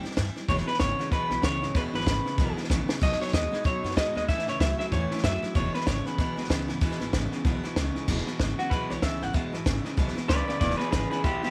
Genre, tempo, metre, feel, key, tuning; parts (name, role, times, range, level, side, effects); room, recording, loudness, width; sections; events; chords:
rockabilly; 190 BPM; 4/4; swing 60% on 8ths; E major; A4 = 440 Hz
electric guitar through a small old amp; melody; 0.0-11.5 s; E4 to F#5; -33 LUFS; equal; lush chorus, tape echo
picked steel-string acoustic guitar; accompaniment; 0.0-11.5 s; E2 to F#4; -38 LUFS; equal
upright bass; bass; 0.0-11.5 s; E1 to G#2; -35 LUFS; equal
compact cocktail drum kit; drums; 0.0-11.5 s; crash cymbal, hi-hat, kick drum, snare drum; -31 LUFS; equal
electric guitar through a small old amp; riff; 0.5-11.5 s; E2 to G#3; -35 LUFS; equal
small room ambience; -27 LUFS; mono
0.0-8.1 A section; 8.1-11.5 B section
drum fill 2.7-3.0; clean electric guitar solo 8.1-11.5
0.5 E; 3.0 B; 4.3 A; 5.5 E